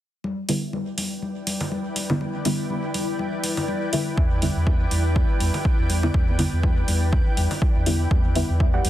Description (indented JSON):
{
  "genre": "dub techno",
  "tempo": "122 BPM",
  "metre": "4/4",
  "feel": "swing 56% on 16ths",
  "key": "E minor",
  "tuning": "A4 = 440 Hz",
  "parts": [
    { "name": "granular cloud pad", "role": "sustained chords", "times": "1.1-8.9 s", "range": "E4 to G5", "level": "-30 LUFS", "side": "left 1 dB", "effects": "built-in reverb, sidechain pumping" },
    { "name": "congas", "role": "percussion", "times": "0.2-8.9 s", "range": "none", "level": "-31 LUFS", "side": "left 2 dB", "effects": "sidechain pumping on perc, dub echo" },
    { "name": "deep mellow chord stab", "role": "stabs", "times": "0.5-8.5 s", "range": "D3 to E4", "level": "-27 LUFS", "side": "equal", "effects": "chorus, phaser, dub echo" },
    { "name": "electronic hi-hat", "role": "drums", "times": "0.5-8.9 s", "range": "none", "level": "-30 LUFS", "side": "right 1 dB", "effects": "overdrive" },
    { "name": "soft dub sub bass", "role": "bass", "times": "4.2-8.9 s", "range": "E2", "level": "-23 LUFS", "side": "equal", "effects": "sidechain pumping" },
    { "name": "electronic kick drum", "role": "drums", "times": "4.2-8.7 s", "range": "none", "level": "-21 LUFS", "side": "equal", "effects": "overdrive" },
    { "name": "warbly dusty pluck", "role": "riff", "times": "8.7-8.9 s", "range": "G4 to F#5", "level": "-26 LUFS", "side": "right 3 dB", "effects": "chorus, sidechain pumping" }
  ],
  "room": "digital ambience",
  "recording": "dense, heavily limited modern master",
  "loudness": "-20 LUFS",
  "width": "side -13 dB against mid",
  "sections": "0.2-8.1 A section",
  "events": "none",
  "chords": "0.2 Em7",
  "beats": "| 0.24 0.73 1.23 1.72 | 2.21 2.70 3.19 3.68 | 4.18 4.67 5.16 5.65 | 6.14 6.63 7.13 7.62 | 8.11 8.60"
}